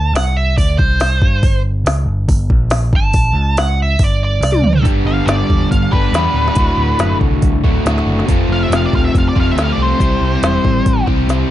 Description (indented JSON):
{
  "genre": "blues rock power trio and southern rock",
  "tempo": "140 BPM",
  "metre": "4/4",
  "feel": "straight",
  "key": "unclear",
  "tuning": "A4 = 439 Hz",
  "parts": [
    { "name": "nasal lead guitar with a parked wah", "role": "second line", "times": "0.0-4.9 s", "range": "C5 to A5", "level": "-19 LUFS", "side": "right 4 dB", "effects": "overdrive" },
    { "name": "overdriven picked electric bass", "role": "bass", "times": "0.0-11.4 s", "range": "D1 to G2", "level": "-16 LUFS", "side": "equal", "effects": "none" },
    { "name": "organic electronic drum kit", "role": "drums", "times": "0.2-11.4 s", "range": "hi-hat, kick drum, snare drum, toms", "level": "-16 LUFS", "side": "equal", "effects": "overdrive" },
    { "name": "crunchy overdriven guitar", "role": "riff", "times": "4.8-11.5 s", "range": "D2 to C5", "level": "-17 LUFS", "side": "left 1 dB", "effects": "none" },
    { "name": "octave-fuzz lead guitar", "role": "melody", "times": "5.1-11.1 s", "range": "B4 to F5", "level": "-20 LUFS", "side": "equal", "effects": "distortion" }
  ],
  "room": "little or no reverb",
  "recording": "nothing above 11.0 kHz",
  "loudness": "-12 LUFS",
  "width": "side -13 dB against mid",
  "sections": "0.0-4.9 A section; 4.9-11.5 B section",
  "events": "lead electric guitar solo 0.0-4.9; drum fill 4.4-4.9, 11.3",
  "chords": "0.0 C5; 1.4 G5; 4.9 G; 6.6 D; 8.3 F; 10.0 C",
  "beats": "0.14 0.57 1.00 | 1.43 1.86 2.29 2.71 | 3.14 3.57 4.00 4.43 | 4.86 5.28 5.71 6.14 | 6.57 7.00 7.43 7.86 | 8.28 8.71 9.14 9.57 | 10.00 10.43 10.86 11.29"
}